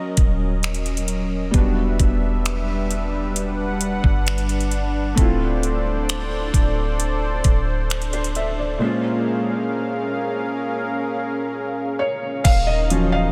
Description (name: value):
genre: contemporary R&B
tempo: 66 BPM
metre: 4/4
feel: straight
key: unclear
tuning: A4 = 440 Hz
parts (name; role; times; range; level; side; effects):
- felt-muted upright piano; accompaniment; 0.0-13.3 s; Bb2 to F5; -27 LUFS; equal; lush chorus
- warm analog pad; sustained chords; 0.0-13.3 s; Gb3 to Gb5; -28 LUFS; equal; chorus
- soft 808-style bass; bass; 0.2-13.3 s; D1 to G1; -26 LUFS; equal; none
- smooth R&B drum kit; drums; 0.2-13.1 s; crash cymbal, finger snaps, hi-hat, kick drum; -23 LUFS; equal; none
- soft round pluck; texture; 12.9-13.3 s; Eb5; -40 LUFS; equal; none
room: moderate huge ambient reverb, RT60 7.8 s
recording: dreamy mix soaked in reverb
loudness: -21 LUFS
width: mono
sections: 0.0-12.4 A section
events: break 8.8-12.4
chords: 0.0 Ebm7; 1.5 Em7; 5.2 Dm7; 8.8 Bbm7; 12.4 Ebm7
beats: 0.63 | 1.54 2.45 3.36 4.27 | 5.18 6.08 6.99 7.90 | 8.81 9.72 10.63 11.54 | 12.45